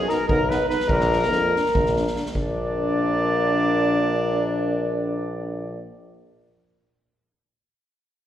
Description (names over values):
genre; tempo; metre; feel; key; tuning
balkan folk, Balkan brass band; 289 BPM (eighths); 7/8; straight; Bb major; A4 = 440 Hz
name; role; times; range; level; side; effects
mellow flugelhorn; melody; 0.0-5.8 s; Bb4 to D5; -25 LUFS; equal; slapback echo
clear alto saxophone; second line; 0.0-5.8 s; D4 to B4; -28 LUFS; left 2 dB; slapback echo
clear tuba; bass; 0.0-5.8 s; Bb1 to F2; -25 LUFS; equal; none
warm French horn; accompaniment; 0.1-5.8 s; D4 to D#4; -29 LUFS; left 3 dB; slapback echo
warm euphonium; accompaniment; 0.1-5.8 s; Bb3 to B3; -31 LUFS; right 3 dB; slapback echo
street-band drum kit; percussion; 0.1-2.6 s; kick drum, snare drum; -27 LUFS; equal; none
room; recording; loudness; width
light reverb, small room reverb; live gig heard through the venue's PA, recital hall reverb; -20 LUFS; side -11 dB against mid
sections
0.0-2.3 A section; 2.3-5.2 B section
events
none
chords
0.0 B; 0.9 Bb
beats
0.05 0.26 0.47 0.67 | 0.88 1.09 1.30 1.51 1.72 1.92 2.13 | 2.34 2.55 2.75 2.96 3.17 3.38 3.59 | 3.79 4.00 4.21 4.42 4.62 4.83 5.04